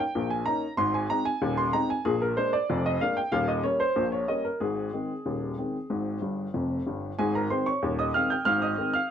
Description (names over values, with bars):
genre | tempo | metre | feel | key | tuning
ragtime piano | 94 BPM | 2/4 | straight | Ab major | A4 = 442 Hz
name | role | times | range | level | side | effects
warm upright piano | solo | 0.0-9.1 s | Eb1 to G6 | -25 LUFS | equal | none
room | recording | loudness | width
moderate studio ambience, RT60 0.5 s | dark, warm production | -25 LUFS | side -8 dB against mid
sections
0.0-7.2 A section; 7.2-9.1 A section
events
upright piano fill 6.2-7.2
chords
0.0 Eb5; 0.8 Ab; 2.1 Bb7; 3.3 Eb7; 4.6 Ab